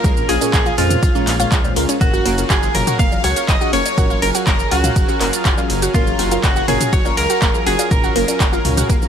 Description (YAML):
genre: progressive house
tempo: 122 BPM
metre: 4/4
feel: straight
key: unclear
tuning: A4 = 441 Hz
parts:
  - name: direct-recorded clean electric guitar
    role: melody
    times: 0.0-9.1 s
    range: F4 to F5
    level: -22 LUFS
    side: equal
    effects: wide subtle chorus, sidechain pumping, digital delay
  - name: soft supersaw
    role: second line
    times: 0.0-9.1 s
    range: F4 to F5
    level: -28 LUFS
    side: right 1 dB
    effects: sidechain pumping, digital delay
  - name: lush unison pad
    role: sustained chords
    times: 0.0-9.1 s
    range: Gb3 to F5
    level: -27 LUFS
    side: equal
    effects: chorus, sidechain pumping
  - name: glassy wavetable pluck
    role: arpeggios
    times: 0.0-8.9 s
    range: Ab3 to Gb5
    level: -23 LUFS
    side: equal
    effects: chorus, sidechain pumping, digital delay
  - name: deep mellow chord stab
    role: stabs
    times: 0.0-9.1 s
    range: Bb2 to F5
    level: -25 LUFS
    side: left 1 dB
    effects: wide subtle chorus, sidechain pumping, digital delay
  - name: dark detuned saw bass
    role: bass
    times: 0.0-9.0 s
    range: Gb1 to F2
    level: -23 LUFS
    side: equal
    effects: sidechain pumping
  - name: deep house drum kit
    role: drums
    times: 0.0-9.1 s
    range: handclaps, hi-hat, ride cymbal, shaker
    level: -22 LUFS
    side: right 1 dB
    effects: overdrive, sidechain pumping on hats, sidechain pumping on cymbals, sidechain pumping on perc
  - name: electronic kick drum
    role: drums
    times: 0.0-9.0 s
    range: none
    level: -18 LUFS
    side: equal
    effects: overdrive
  - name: electronic toms, congas and bongos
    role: percussion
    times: 0.0-8.9 s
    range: none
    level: -25 LUFS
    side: left 1 dB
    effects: sidechain pumping on toms, sidechain pumping on perc
room: little or no reverb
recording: none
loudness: -14 LUFS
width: side -8 dB against mid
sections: 0.0-9.1 A section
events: none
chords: 0.0 Bbm7; 2.0 Gbmaj7